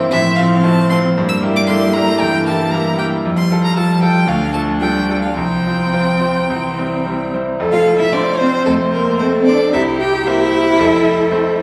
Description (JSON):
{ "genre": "quick classical-period movement for piano quartet", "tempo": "114 BPM", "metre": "4/4", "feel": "rubato", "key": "F major", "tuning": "A4 = 439 Hz", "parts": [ { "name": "warm cello", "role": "second line", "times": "0.0-11.6 s", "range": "E3 to G4", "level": "-19 LUFS", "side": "equal", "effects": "none" }, { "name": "bright grand piano", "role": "accompaniment", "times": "0.0-11.6 s", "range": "F1 to C5", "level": "-21 LUFS", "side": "equal", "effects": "none" }, { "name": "rich viola", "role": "accompaniment", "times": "0.0-11.6 s", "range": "G3 to C5", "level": "-22 LUFS", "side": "equal", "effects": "none" }, { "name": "rich violin", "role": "melody", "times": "0.1-11.6 s", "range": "A4 to E6", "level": "-23 LUFS", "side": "equal", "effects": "none" } ], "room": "wet recital hall reverb, RT60 1.6 s", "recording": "heard from further back in the room", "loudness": "-15 LUFS", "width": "mono", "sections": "0.0-7.6 A section; 7.6-11.6 B section", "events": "none", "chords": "0.1 F/A; 1.2 Edim/G; 3.2 F; 4.3 Dm; 5.4 Csus4; 6.5 C; 7.6 F; 9.7 C7; 10.8 F", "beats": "0.12 0.64 | 1.17 1.69 2.21 2.73 | 3.25 3.76 4.29 4.82 | 5.37 5.93 6.49 7.04 | 7.59 8.13 8.66 9.20 | 9.73 10.26 10.79 11.32" }